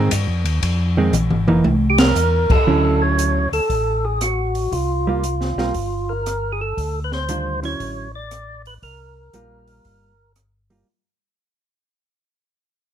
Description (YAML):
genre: soul jazz organ trio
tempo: 117 BPM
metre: 4/4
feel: swing 66% on 8ths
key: unclear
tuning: A4 = 441 Hz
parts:
  - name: hollow-body jazz guitar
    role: accompaniment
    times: 0.0-10.9 s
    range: D3 to F4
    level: -21 LUFS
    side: right 3 dB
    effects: none
  - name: mellow tonewheel organ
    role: bass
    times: 0.0-10.8 s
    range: F1 to G2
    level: -22 LUFS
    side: equal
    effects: overdrive, chorus vibrato, slow rotary speaker
  - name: open jazz drum kit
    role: drums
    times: 0.1-10.8 s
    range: crash cymbal, hi-hat, kick drum, ride cymbal, rim click, snare drum, toms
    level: -21 LUFS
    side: equal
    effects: none
  - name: percussive tonewheel organ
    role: melody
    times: 1.9-10.3 s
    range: F4 to D5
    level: -22 LUFS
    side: right 1 dB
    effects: slow rotary speaker, overdrive, plate reverb
room: light reverb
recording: none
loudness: -17 LUFS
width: side -10 dB against mid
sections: 0.0-2.7 A section; 2.7-10.9 B section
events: drum fill 1.1-2.2; band accent 1.9; fade-out 2.7-10.9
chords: 0.0 Fm7; 1.6 C7; 2.7 Dmaj9; 4.7 C7sus4; 6.8 Dmaj9; 8.8 C7sus4